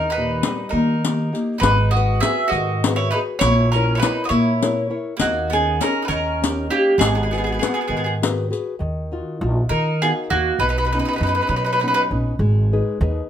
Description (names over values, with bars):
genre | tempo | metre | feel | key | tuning
italian folk, Italian serenade | 67 BPM (dotted quarters) | 6/8 | straight | G# minor, Eb minor from 8.8 s | A4 = 442 Hz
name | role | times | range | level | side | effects
mandolin | melody | 0.0-12.0 s | F#4 to E5 | -21 LUFS | right 1 dB | plate reverb
mandolin | second line | 0.0-12.0 s | A#3 to G#4 | -28 LUFS | right 4 dB | none
nylon-string guitar | accompaniment | 0.0-13.3 s | A#2 to F5 | -24 LUFS | left 2 dB | none
upright bass | bass | 0.0-13.2 s | G#1 to D#3 | -22 LUFS | right 1 dB | none
riq | percussion | 0.4-8.7 s | none | -23 LUFS | left 6 dB | none
room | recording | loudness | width
moderate studio reverb, RT60 0.6 s | none | -17 LUFS | side -9 dB against mid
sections
0.0-8.8 A section; 8.8-13.3 B section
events
none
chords
0.0 D#; 1.6 G#m7; 3.4 A#dim; 5.2 D#7sus4; 6.1 D#7; 7.0 G#m7; 8.8 Ebmadd9; 10.6 Badd9; 12.4 Abm